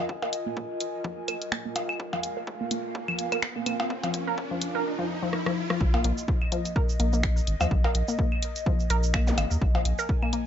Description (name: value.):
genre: minimal techno.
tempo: 126 BPM.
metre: 4/4.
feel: swing 56% on 16ths.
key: unclear.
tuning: A4 = 440 Hz.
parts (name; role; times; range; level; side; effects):
resonant blip pluck; riff; 0.0-10.4 s; F3 to Bb4; -31 LUFS; left 1 dB; chorus, sidechain pumping, ping-pong delay.
riser and zap; sound effects; 1.3-5.8, 9.3-9.4 s; none; -36 LUFS; right 1 dB; none.
airy breathy pad; texture; 0.0-10.5 s; F4 to Ab5; -35 LUFS; equal; chorus, sidechain pumping.
electronic kick drum; drums; 0.1-10.2 s; none; -27 LUFS; equal; high-pass filter on kick, studio reverb.
percussion blips and claves; percussion; 0.2-10.3 s; none; -31 LUFS; equal; overdrive, studio reverb, dub echo.
house drum kit; drums; 0.3-10.4 s; cabasa, finger snaps, hi-hat, rim click; -31 LUFS; equal; studio reverb.
saturated sub bass; bass; 5.8-9.9 s; Ab1 to Eb2; -26 LUFS; equal; tube saturation, sidechain pumping.
room: light reverb.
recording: nothing above 7.6 kHz.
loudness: -25 LUFS.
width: side -10 dB against mid.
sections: 0.0-5.8 A section; 5.8-10.5 B section.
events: build-up 0.0-5.8; filter sweep on synth pluck 0.0-5.8; riser 1.3-5.8; drum fill 5.3-5.8; drop 5.8-10.5.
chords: 0.0 Bbsus4.